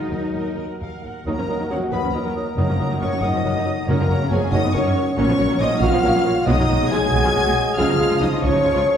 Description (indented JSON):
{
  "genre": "classical",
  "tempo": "92 BPM (dotted quarters)",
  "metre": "6/8",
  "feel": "straight",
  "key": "Eb minor",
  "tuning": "A4 = 442 Hz",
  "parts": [
    { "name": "warm symphonic violin section", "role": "melody", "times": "0.0-9.0 s", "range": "Gb5 to G#6", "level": "-29 LUFS", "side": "left 3 dB", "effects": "none" },
    { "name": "warm symphonic violin section", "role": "second line", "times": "0.0-9.0 s", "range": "Gb4 to G#5", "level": "-31 LUFS", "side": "left 2 dB", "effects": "none" },
    { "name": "clear symphonic viola section", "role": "accompaniment", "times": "0.0-8.8 s", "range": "F3 to Bb4", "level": "-27 LUFS", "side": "right 1 dB", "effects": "none" },
    { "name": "dark French horn section", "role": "sustained chords", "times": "0.0-8.9 s", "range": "Gb3 to G#4", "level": "-24 LUFS", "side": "left 1 dB", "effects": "none" },
    { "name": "concert harp", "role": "arpeggios", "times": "0.0-9.0 s", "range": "Gb2 to Eb6", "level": "-28 LUFS", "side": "left 3 dB", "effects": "none" },
    { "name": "warm symphonic cello section", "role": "bass", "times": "0.0-8.8 s", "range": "Eb2 to Eb4", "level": "-26 LUFS", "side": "right 1 dB", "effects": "none" },
    { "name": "timpani", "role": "percussion", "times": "0.0-4.5 s", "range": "Gb2 to Eb3", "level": "-26 LUFS", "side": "equal", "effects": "none" },
    { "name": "rich symphonic double bass section", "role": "bass", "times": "0.1-8.7 s", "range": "Gb1 to Eb2", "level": "-26 LUFS", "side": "right 1 dB", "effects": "none" },
    { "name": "hollow small flute group", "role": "second line", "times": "1.3-9.0 s", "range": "Gb4 to G#5", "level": "-26 LUFS", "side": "right 1 dB", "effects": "none" },
    { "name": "mellow cor anglais", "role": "second line", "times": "1.3-9.0 s", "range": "Db5 to Eb5", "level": "-33 LUFS", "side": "right 1 dB", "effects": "none" },
    { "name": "warm clarinet", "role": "second line", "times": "1.3-9.0 s", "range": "G#4 to Bb4", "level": "-32 LUFS", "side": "left 2 dB", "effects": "none" },
    { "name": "warm bassoon", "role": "accompaniment", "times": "1.3-9.0 s", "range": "E#3 to Gb3", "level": "-29 LUFS", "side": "equal", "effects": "none" }
  ],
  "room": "wet recital hall reverb, RT60 1.6 s",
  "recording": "heard from further back in the room, lossy compression artefacts",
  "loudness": "-17 LUFS",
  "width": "side -8 dB against mid",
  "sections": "0.0-1.3 A section; 1.3-9.0 B section",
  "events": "none",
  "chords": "0.0 Ebm; 2.6 Ebm/Gb; 3.9 Gb; 5.2 Gb/Bb; 6.5 G#m7/B; 7.8 C#"
}